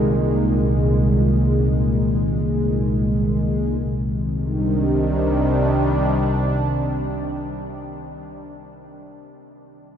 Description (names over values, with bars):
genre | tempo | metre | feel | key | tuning
dark ambient drone | free time | none | none | C minor | A4 = 439 Hz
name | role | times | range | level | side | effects
sweeping resonant pad | sustained chords | 0.0-8.5 s | C2 to Eb4 | -21 LUFS | equal | chorus
deep rumbling drone | drone | 0.0-8.1 s | C2 to C3 | -23 LUFS | equal | built-in reverb, phaser, wide subtle chorus
quartz singing bowl | texture | 0.0-3.8 s | Bb4 | -39 LUFS | right 5 dB | none
room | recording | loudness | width
wet huge ambient reverb, RT60 7.6 s | none | -18 LUFS | side -8 dB against mid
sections
0.0-3.8 A section; 3.8-7.7 B section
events
none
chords
0.0 Absus2/C; 3.8 Cmadd9